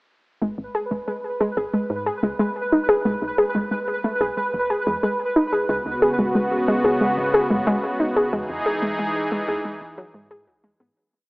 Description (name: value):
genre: IDM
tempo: 91 BPM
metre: 4/4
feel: straight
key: G# minor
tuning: A4 = 439 Hz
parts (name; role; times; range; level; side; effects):
- warbly dusty pluck; arpeggios; 0.4-10.9 s; F#3 to G#4; -21 LUFS; equal; chorus, cassette tape, tape echo
- woody FM bass; bass; 0.4-10.9 s; D#1 to G#2; -31 LUFS; equal; none
- pulsing gated texture; texture; 0.7-11.0 s; B4; -27 LUFS; right 1 dB; chorus, built-in reverb
- warm analog pad; sustained chords; 5.7-10.9 s; C#3 to G#4; -23 LUFS; equal; chorus
room: light reverb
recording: dry, gritty hardware recording, AM radio sound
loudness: -20 LUFS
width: side -24 dB against mid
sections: 0.4-11.0 groove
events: fade-out 7.4-11.0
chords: 0.4 G#m; 3.1 N.C.; 5.7 C#7sus4; 8.3 Emaj7